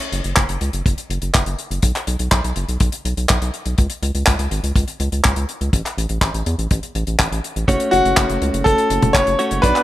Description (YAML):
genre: italo disco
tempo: 123 BPM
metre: 4/4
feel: straight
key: F# minor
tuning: A4 = 440 Hz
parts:
  - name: damped 70s drum kit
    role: drums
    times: 0.0-9.8 s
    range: handclaps, hi-hat, toms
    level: -21 LUFS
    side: left 1 dB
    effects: small room ambience
  - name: round analog bass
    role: bass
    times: 0.1-9.7 s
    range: F#1 to E2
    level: -22 LUFS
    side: equal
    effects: tube saturation
  - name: kick drum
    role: drums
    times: 0.4-9.7 s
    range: none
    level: -18 LUFS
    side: equal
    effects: small room ambience
  - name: direct-recorded clean electric guitar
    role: stabs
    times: 7.7-9.8 s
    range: A3 to D5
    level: -21 LUFS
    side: right 1 dB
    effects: spring reverb, low-pass filter, digital delay
  - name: bright baby grand piano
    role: melody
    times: 7.9-9.8 s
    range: F#4 to C#5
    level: -16 LUFS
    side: left 1 dB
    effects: digital delay
room: light reverb, small room ambience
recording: none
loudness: -16 LUFS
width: side -14 dB against mid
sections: 0.0-9.8 A section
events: none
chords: 0.0 F#5; 1.8 B5; 3.8 C#5; 5.7 A5; 7.7 F#m